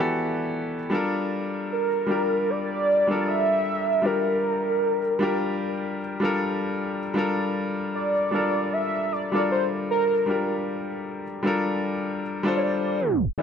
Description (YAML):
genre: R&B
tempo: 77 BPM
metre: 4/4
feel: swing 58% on 16ths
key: unclear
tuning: A4 = 440 Hz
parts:
  - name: clear baby grand piano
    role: accompaniment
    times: 0.0-13.4 s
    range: E3 to D5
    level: -25 LUFS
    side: left 2 dB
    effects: none
  - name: warm velvety synth lead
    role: melody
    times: 1.7-13.4 s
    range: Bb4 to E5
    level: -24 LUFS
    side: right 1 dB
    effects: chorus, digital delay
room: moderate plate reverb, RT60 2.9 s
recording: tape stop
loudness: -22 LUFS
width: side -7 dB against mid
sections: 0.0-13.4 A section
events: tape stop 13.0-13.4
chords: 0.0 Em7; 0.9 Gm7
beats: 0.15 | 0.93 1.71 2.48 3.26 | 4.04 4.82 5.60 6.38 | 7.16 7.94 8.72 9.50 | 10.28 11.06 11.84 12.61 | 13.39